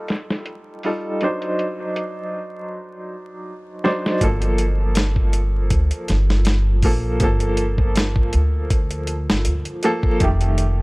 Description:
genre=trip hop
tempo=80 BPM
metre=4/4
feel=swing 54% on 16ths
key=G minor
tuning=A4 = 438 Hz
part: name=clear upright piano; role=accompaniment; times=0.0-10.8 s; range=Eb3 to C5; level=-24 LUFS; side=equal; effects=tremolo, tape echo
part: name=dusty soul sampler-style drum kit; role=drums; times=0.1-10.8 s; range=hi-hat, kick drum, snare drum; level=-20 LUFS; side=equal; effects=low-pass filter on hats, low-pass filter on snare, low-pass filter on kick
part: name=upright bass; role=bass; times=4.2-10.8 s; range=F1 to D2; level=-19 LUFS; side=equal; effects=none
room=studio reverb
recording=dry, gritty hardware recording, vinyl crackle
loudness=-18 LUFS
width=side -24 dB against mid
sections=0.0-4.2 A section; 4.2-10.8 B section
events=drum fill 3.8-4.2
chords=0.0 F9; 1.2 D7b9; 4.2 Gm9; 10.2 F9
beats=0.46 | 1.21 1.96 2.71 3.46 | 4.21 4.96 5.71 6.46 | 7.21 7.96 8.71 9.46 | 10.21

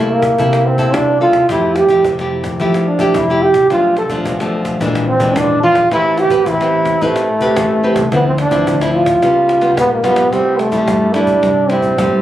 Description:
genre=samba and choro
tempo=109 BPM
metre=4/4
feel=straight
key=C major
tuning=A4 = 436 Hz
part: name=breathy trombone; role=melody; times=0.0-12.2 s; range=A3 to A4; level=-13 LUFS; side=right 1 dB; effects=plate reverb, tape echo
part: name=nylon-string guitar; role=accompaniment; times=0.0-12.2 s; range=F2 to B4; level=-18 LUFS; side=left 1 dB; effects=none
part: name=fingered electric bass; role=bass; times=0.0-12.2 s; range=A1 to F3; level=-22 LUFS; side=equal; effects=none
part: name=cajon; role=drums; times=0.1-12.1 s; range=none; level=-24 LUFS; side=equal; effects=none
room=light reverb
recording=recorded on a phone in the room, club reverb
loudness=-11 LUFS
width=side -12 dB against mid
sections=0.0-10.3 A section; 10.3-12.2 B section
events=drum fill 9.2-10.3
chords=0.0 C6; 1.5 Fmaj9; 3.7 Bm7b5; 4.8 Bb7#11; 5.9 Am9; 8.1 Dm9; 9.2 Db7#11; 10.3 C6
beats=0.39 0.94 | 1.49 2.04 2.60 3.15 | 3.70 4.25 4.81 5.36 | 5.91 6.46 7.02 7.57 | 8.12 8.67 9.22 9.78 | 10.33 10.88 11.43 11.99

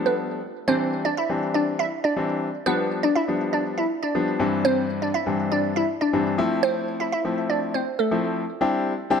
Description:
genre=pop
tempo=121 BPM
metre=4/4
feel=straight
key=C major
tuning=A4 = 441 Hz
part: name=clear concert grand piano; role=accompaniment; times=0.0-9.2 s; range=G2 to G4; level=-24 LUFS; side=left 3 dB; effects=none
part: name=glassy wavetable pluck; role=melody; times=0.1-8.2 s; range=A3 to E5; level=-24 LUFS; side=right 2 dB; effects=chorus
room=moderate plate reverb, RT60 2.6 s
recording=dark, warm production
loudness=-21 LUFS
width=side -6 dB against mid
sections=0.7-8.6 A section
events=none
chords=0.0 G7; 0.7 Cadd9; 2.7 G7; 4.4 Cadd9/G; 6.4 Fmaj7; 8.6 Cadd9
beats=0.18 | 0.68 1.18 1.67 2.17 | 2.66 3.16 3.65 4.15 | 4.65 5.14 5.64 6.13 | 6.63 7.13 7.62 8.12 | 8.61 9.11

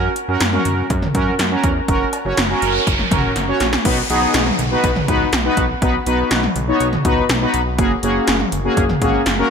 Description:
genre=synth-pop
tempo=122 BPM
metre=4/4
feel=straight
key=B major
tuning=A4 = 440 Hz
part: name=analog synth brass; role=accompaniment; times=0.0-9.5 s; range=A#3 to C#5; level=-18 LUFS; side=equal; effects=chorus
part: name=fat analog bass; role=bass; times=0.0-9.4 s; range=F#1 to F#2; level=-23 LUFS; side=equal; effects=none
part: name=80s electronic pad drums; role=drums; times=0.2-9.4 s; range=cowbell, crash cymbal, hi-hat, kick drum, snare drum, toms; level=-19 LUFS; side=equal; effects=gated reverb on snare and toms, overdrive
part: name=noise sweep and downlifter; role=sound effects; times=2.3-7.8 s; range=none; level=-26 LUFS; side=right 2 dB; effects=none
room=moderate plate reverb, RT60 2.4 s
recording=bright 1980s-style digital production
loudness=-15 LUFS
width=side -6 dB against mid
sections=0.0-3.9 A section; 3.9-9.5 B section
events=noise sweep 2.3-3.9; drum fill 3.4-3.9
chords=0.0 F#; 3.9 B; 7.8 F#add9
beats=0.41 0.90 1.39 | 1.88 2.38 2.87 3.36 | 3.85 4.34 4.83 5.33 | 5.82 6.31 6.80 7.29 | 7.79 8.28 8.77 9.26

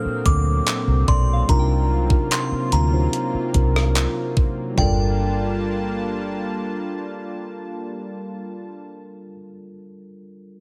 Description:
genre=contemporary R&B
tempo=73 BPM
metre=4/4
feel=straight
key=G minor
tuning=A4 = 439 Hz
part: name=mellow tine electric piano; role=accompaniment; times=0.0-10.6 s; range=Bb2 to C5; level=-30 LUFS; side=equal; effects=none
part: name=warm analog pad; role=sustained chords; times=0.0-8.8 s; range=C3 to A5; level=-32 LUFS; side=equal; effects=chorus
part: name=soft synth bell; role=texture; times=0.0-9.3 s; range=C5 to G5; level=-40 LUFS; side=equal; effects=chorus, dub echo
part: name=vintage muted fingered electric bass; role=bass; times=0.1-9.3 s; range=G1 to D2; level=-22 LUFS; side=equal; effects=none
part: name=glassy synth bell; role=melody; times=0.3-9.3 s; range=G5 to D6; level=-30 LUFS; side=equal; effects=chorus, tremolo, dub echo
part: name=crisp 8-bit digital drum machine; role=drums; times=0.3-5.0 s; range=handclaps, hi-hat, kick drum, rim click, toms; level=-23 LUFS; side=equal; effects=none
room=little or no reverb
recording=echo-heavy mix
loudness=-21 LUFS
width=mono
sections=0.0-4.8 A section; 4.8-8.1 B section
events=none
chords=0.0 Bbmaj9; 1.5 Cm11; 4.8 Gm9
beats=0.67 | 1.49 2.31 3.13 3.95 | 4.78 5.60 6.42 7.24

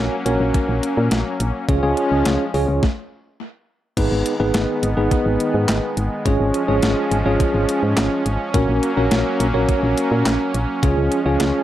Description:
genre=synth-pop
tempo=105 BPM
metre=4/4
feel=straight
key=G# dorian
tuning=A4 = 440 Hz
part: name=tine electric piano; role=accompaniment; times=0.0-11.6 s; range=B3 to C#5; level=-20 LUFS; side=right 1 dB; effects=medium stereo tremolo
part: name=brassy analog pad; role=sustained chords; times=0.0-11.6 s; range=D#3 to C#4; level=-24 LUFS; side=equal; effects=chorus
part: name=solid FM bass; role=bass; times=0.0-11.5 s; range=G#1 to A#2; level=-21 LUFS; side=equal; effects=none
part: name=clean 12-bit digital drum machine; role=drums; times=0.3-11.5 s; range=crash cymbal, handclaps, hi-hat, kick drum, snare drum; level=-22 LUFS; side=equal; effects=overdrive, analog delay
room=moderate spring reverb, RT60 1.1 s, digital ambience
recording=echo-heavy mix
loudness=-16 LUFS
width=side -13 dB against mid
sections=0.0-4.0 A section; 4.0-11.6 B section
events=stop 2.8-4.0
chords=0.0 F#/A#; 1.7 C#; 4.0 G#m; 6.3 C#/G#; 8.5 F#/A#; 10.8 C#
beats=0.54 1.11 | 1.69 2.26 2.83 3.40 | 3.97 4.54 5.12 5.69 | 6.26 6.83 7.40 7.97 | 8.54 9.12 9.69 10.26 | 10.83 11.40

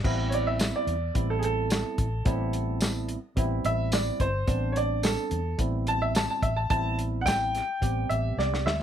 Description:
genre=straight-eighth soul blues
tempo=108 BPM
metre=4/4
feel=straight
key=A minor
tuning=A4 = 440 Hz
part: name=barky tine electric piano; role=accompaniment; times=0.0-8.7 s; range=G3 to G4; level=-33 LUFS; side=right 3 dB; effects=overdrive, wide subtle chorus
part: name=vintage muted fingered electric bass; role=bass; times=0.0-8.8 s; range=G1 to E2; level=-29 LUFS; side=left 1 dB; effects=none
part: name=warm soul drum kit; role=drums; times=0.0-8.8 s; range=crash cymbal, hi-hat, kick drum, snare drum, tambourine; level=-28 LUFS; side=left 1 dB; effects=none
part: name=clear upright piano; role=second line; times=0.3-8.8 s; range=G#4 to A5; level=-29 LUFS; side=right 2 dB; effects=none
room=light reverb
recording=none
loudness=-25 LUFS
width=side -9 dB against mid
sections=0.0-8.8 A section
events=upright piano solo 0.0-8.8; drum fill 8.4-8.8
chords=0.0 Am7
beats=| 0.05 0.60 1.16 1.71 | 2.27 2.82 3.38 3.93 | 4.49 5.04 5.60 6.15 | 6.71 7.26 7.82 8.38

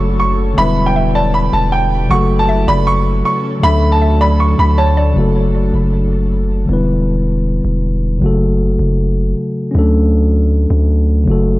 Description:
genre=hip hop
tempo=157 BPM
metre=4/4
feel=half-time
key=F# phrygian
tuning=A4 = 439 Hz
part: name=clear concert grand piano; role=melody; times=0.0-5.1 s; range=G5 to C#6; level=-17 LUFS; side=right 2 dB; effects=tape echo
part: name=mellow tine electric piano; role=accompaniment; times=0.0-11.6 s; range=C#3 to B4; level=-16 LUFS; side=left 1 dB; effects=none
part: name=granular cloud pad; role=sustained chords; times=0.0-5.1 s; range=F#3 to A4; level=-27 LUFS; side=equal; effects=built-in reverb
part: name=long sustained 808-style bass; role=bass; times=0.0-11.6 s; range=E1 to D2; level=-14 LUFS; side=equal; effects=none
part: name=hollow square pluck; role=second line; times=0.6-5.2 s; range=C#5 to F#5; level=-24 LUFS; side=equal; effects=chorus, tape echo
room=digital ambience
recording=dry, gritty hardware recording, cassette tape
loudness=-11 LUFS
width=side -18 dB against mid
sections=0.0-5.2 A section; 5.2-11.6 B section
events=none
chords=0.0 F#m; 0.6 Em7; 2.1 F#m; 3.6 D; 5.2 F#m; 6.7 Em7; 8.2 F#m; 9.7 Dmaj7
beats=0.20 | 0.58 0.96 1.34 1.72 | 2.10 2.49 2.87 3.25 | 3.63 4.02 4.40 4.78 | 5.16 5.54 5.93 6.31 | 6.69 7.07 7.46 7.84 | 8.22 8.60 8.98 9.37 | 9.75 10.13 10.51 10.89 | 11.28

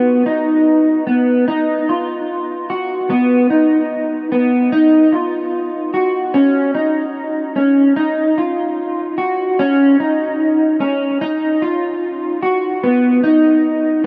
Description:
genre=dream pop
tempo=74 BPM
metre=4/4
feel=straight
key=B lydian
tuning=A4 = 440 Hz
part: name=electric guitar at the edge of break-up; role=solo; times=0.0-14.1 s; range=B3 to F#4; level=-16 LUFS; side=equal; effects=analog chorus, tape echo
room=wet huge ambient reverb, RT60 5.8 s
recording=dark, warm production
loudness=-16 LUFS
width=mono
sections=0.0-11.2 A section; 11.2-14.1 B section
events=none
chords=none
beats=0.67 | 1.48 2.29 3.10 3.91 | 4.72 5.53 6.34 7.16 | 7.97 8.78 9.59 10.40 | 11.21 12.02 12.83 13.64

